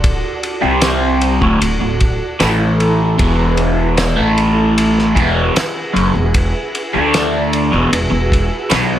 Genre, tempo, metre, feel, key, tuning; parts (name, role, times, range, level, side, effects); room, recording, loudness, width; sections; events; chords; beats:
psychedelic rock; 76 BPM; 4/4; straight; A4 = 440 Hz
ensemble organ-string; sustained chords; 0.0-9.0 s; B3 to A5; -23 LUFS; right 3 dB; ensemble chorus
crunchy overdriven guitar; riff; 0.0-9.0 s; D2 to D4; -14 LUFS; equal; phaser
upright bass; bass; 0.0-9.0 s; D1 to D2; -19 LUFS; equal
cloth-damped thuddy drum kit; drums; 0.0-8.9 s; kick drum, ride cymbal, snare drum; -19 LUFS; equal
tambourine; percussion; 0.8-8.9 s; -31 LUFS; right 12 dB
light reverb, small room ambience; -12 LUFS; side -11 dB against mid
0.0-9.0 A section
0.0 D; 0.6 C5; 1.4 D; 2.4 A5; 3.2 Eadd9; 4.2 A5; 5.2 Eadd9; 6.9 D5; 7.7 Eadd9
| 0.04 0.82 1.61 2.40 | 3.19 3.98 4.76 5.55 | 6.34 7.13 7.92 8.71